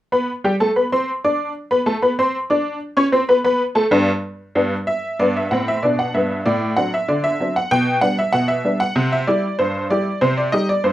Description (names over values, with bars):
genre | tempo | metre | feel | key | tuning
ragtime piano | 95 BPM | 2/4 | straight | G major | A4 = 440 Hz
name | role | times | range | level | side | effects
honky-tonk upright piano | solo | 0.1-10.9 s | G2 to D6 | -16 LUFS | equal | none
room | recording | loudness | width
light reverb | none | -16 LUFS | side -14 dB against mid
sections
0.1-5.2 A section; 5.2-10.9 B section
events
none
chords
0.1 G; 6.4 D7/A; 7.7 G/B; 9.0 C; 10.2 Cm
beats
| 0.12 0.76 | 1.39 2.02 | 2.65 3.28 | 3.91 4.54 | 5.18 5.81 | 6.44 7.07 | 7.70 8.32 | 8.95 9.58 | 10.21 10.84